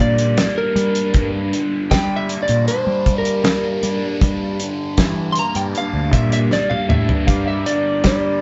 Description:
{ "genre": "psychedelic rock", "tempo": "78 BPM", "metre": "4/4", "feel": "straight", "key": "G dorian", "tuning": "A4 = 440 Hz", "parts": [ { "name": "electric slide guitar", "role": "melody", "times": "0.0-8.4 s", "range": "Bb4 to C6", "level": "-23 LUFS", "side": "equal", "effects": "none" }, { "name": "fuzz guitar", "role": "riff", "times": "0.0-8.4 s", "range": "G2 to D4", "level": "-26 LUFS", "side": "equal", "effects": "distortion, phaser" }, { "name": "fuzz picked electric bass", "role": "bass", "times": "0.0-8.4 s", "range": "D2 to G3", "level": "-24 LUFS", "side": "equal", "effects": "overdrive" }, { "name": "damped 70s drum kit", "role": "drums", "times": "0.2-8.2 s", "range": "hi-hat, kick drum, snare drum, toms", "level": "-21 LUFS", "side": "equal", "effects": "none" }, { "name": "combo organ", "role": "sustained chords", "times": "7.3-8.4 s", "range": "Bb3 to D5", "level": "-32 LUFS", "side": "equal", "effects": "none" } ], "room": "moderate studio reverb, RT60 0.7 s", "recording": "band playing live in one room, nothing above 7.9 kHz", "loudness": "-18 LUFS", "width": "mono", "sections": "0.0-8.4 A section", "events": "electric slide guitar solo 0.0-8.4; drum fill 6.5-7.3", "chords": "0.0 Gm" }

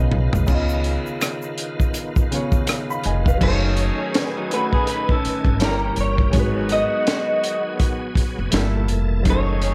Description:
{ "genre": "R&B, neo-soul", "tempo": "82 BPM", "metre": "4/4", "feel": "swing 59% on 16ths", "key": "F# dorian", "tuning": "A4 = 440 Hz", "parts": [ { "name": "warm grand piano", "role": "accompaniment", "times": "0.0-9.7 s", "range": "C#3 to B5", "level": "-29 LUFS", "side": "equal", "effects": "plate reverb" }, { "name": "bright tonewheel organ", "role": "sustained chords", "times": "0.0-9.7 s", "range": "Bb2 to G#5", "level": "-33 LUFS", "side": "equal", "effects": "slow rotary speaker, chorus vibrato, plate reverb" }, { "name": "upright bass", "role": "bass", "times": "0.0-9.7 s", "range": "E#1 to D#2", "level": "-24 LUFS", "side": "equal", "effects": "none" }, { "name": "crunchy breakbeat drum kit", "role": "drums", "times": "0.1-9.7 s", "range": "crash cymbal, hi-hat, kick drum, rim click, snare drum, toms", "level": "-24 LUFS", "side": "equal", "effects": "none" }, { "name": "egg shaker and finger snaps", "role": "percussion", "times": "0.3-3.4 s", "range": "none", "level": "-39 LUFS", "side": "equal", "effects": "none" }, { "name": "electric guitar through a small old amp", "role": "melody", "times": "3.4-9.7 s", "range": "Bb4 to D#5", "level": "-26 LUFS", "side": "equal", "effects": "ensemble chorus, slapback echo, plate reverb" }, { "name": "mellow horn section", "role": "stabs", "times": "3.4-9.7 s", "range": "Bb2 to G#4", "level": "-33 LUFS", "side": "equal", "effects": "plate reverb" }, { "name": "electric guitar through a small old amp", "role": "second line", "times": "4.4-5.6 s", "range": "F#3 to B4", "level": "-29 LUFS", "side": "equal", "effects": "plate reverb" } ], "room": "light reverb", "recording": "none", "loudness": "-21 LUFS", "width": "mono", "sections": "0.5-3.4 A section; 3.4-9.7 B section", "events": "drum fill 0.0-0.5", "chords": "0.5 C#9; 3.4 F#m69; 5.6 Gdim7; 6.3 G#m7; 8.5 Gm69" }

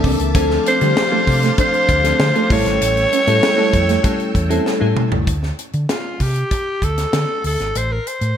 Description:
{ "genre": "polished 1980s jazz-funk pop", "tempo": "97 BPM", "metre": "4/4", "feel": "straight", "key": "D minor", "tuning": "A4 = 440 Hz", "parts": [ { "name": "bell-like FM electric piano", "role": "accompaniment", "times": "0.0-5.3 s", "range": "E3 to C5", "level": "-19 LUFS", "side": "left 2 dB", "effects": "wide subtle chorus" }, { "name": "string machine, violins", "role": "sustained chords", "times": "0.0-5.3 s", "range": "Bb3 to E6", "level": "-27 LUFS", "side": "equal", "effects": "ensemble chorus" }, { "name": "mellow electric guitar", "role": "riff", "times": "0.0-5.1 s", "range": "G3 to D4", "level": "-26 LUFS", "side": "right 9 dB", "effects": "analog chorus" }, { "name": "hollow-body short-scale fingered electric bass", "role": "bass", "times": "0.0-8.3 s", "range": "G#1 to D3", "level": "-20 LUFS", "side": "equal", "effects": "none" }, { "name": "tight funk drum kit", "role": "drums", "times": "0.0-8.4 s", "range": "hi-hat, kick drum, snare drum, toms", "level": "-21 LUFS", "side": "equal", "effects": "gated reverb" }, { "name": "raspy alto saxophone", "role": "melody", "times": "0.7-8.4 s", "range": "F4 to C#5", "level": "-18 LUFS", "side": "equal", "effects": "none" } ], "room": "light reverb", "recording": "bright 1980s-style digital production", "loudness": "-14 LUFS", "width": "side -9 dB against mid", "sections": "0.0-5.3 A section; 5.3-8.4 B section", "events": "drum fill 4.7-5.3", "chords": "0.4 Dm7; 2.5 A7; 5.3 D5; 7.7 Am" }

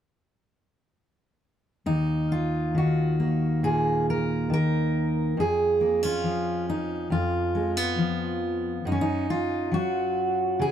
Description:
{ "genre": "folk, solo fingerstyle acoustic guitar", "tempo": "69 BPM", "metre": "4/4", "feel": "straight", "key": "Eb minor", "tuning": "A4 = 440 Hz", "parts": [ { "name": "fingerpicked steel-string acoustic guitar", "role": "solo", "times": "1.9-10.7 s", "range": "Eb2 to Bb4", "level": "-23 LUFS", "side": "equal", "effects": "none" } ], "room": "light reverb", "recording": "dark, warm production", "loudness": "-23 LUFS", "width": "side -9 dB against mid", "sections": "1.9-10.7 A section", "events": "none", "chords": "1.9 Ebm; 5.4 Db7/F; 8.9 Gbmaj7(no3)" }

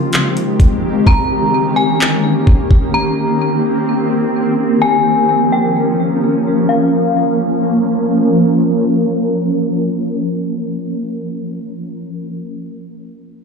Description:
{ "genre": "hip hop, atmospheric cloud-rap", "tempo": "128 BPM", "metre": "4/4", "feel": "half-time", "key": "Bb dorian", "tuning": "A4 = 440 Hz", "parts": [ { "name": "granular cloud pad", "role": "sustained chords", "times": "0.0-11.2 s", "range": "Eb3 to Bb4", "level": "-14 LUFS", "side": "equal", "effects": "built-in reverb, sidechain pumping, low-pass filter" }, { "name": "smooth R&B drum kit", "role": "drums", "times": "0.1-2.8 s", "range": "handclaps, hi-hat, kick drum", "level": "-12 LUFS", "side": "equal", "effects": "none" }, { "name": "metallic FM bell", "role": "melody", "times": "1.1-8.1 s", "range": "F5 to Bb5", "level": "-19 LUFS", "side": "left 3 dB", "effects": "chorus, phaser, low-pass filter, ping-pong delay" } ], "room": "light reverb, digital ambience", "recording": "played on a big sound system in a bare room, large studio reverb", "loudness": "-12 LUFS", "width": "side -5 dB against mid", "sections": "0.0-6.7 A section; 6.7-10.4 B section", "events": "filter sweep 0.0-6.7", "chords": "0.0 Abmaj7; 1.1 Eb7; 2.9 Cm7; 4.8 Bbm" }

